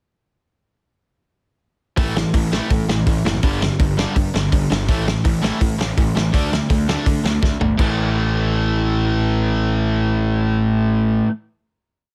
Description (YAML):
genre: punk rock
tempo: 165 BPM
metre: 4/4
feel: straight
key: unclear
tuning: A4 = 438 Hz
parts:
  - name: distorted electric guitar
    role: riff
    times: 2.0-11.3 s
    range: G2 to D4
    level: -25 LUFS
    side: equal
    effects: overdrive
  - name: overdriven electric guitar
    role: riff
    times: 2.0-11.3 s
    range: G2 to D4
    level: -26 LUFS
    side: equal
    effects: none
  - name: fuzz picked electric bass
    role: bass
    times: 2.0-11.2 s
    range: F#1 to D3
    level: -24 LUFS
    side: equal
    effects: overdrive
  - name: loose indie drum kit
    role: drums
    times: 2.0-7.9 s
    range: crash cymbal, hi-hat, kick drum, snare drum, toms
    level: -22 LUFS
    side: equal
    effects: none
room: little or no reverb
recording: dense, heavily limited modern master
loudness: -19 LUFS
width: mono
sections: 2.0-7.8 verse; 7.8-10.7 final chord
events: drum fill 7.4-7.8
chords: 2.0 A5; 3.4 G5; 4.9 A5; 6.3 D5; 7.8 A5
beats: | 1.98 2.35 2.71 3.07 | 3.44 3.80 4.16 4.53 | 4.89 5.25 5.61 5.97 | 6.34 6.70 7.06 7.43 | 7.79 8.15 8.52 8.88 | 9.25 9.61 9.98 10.34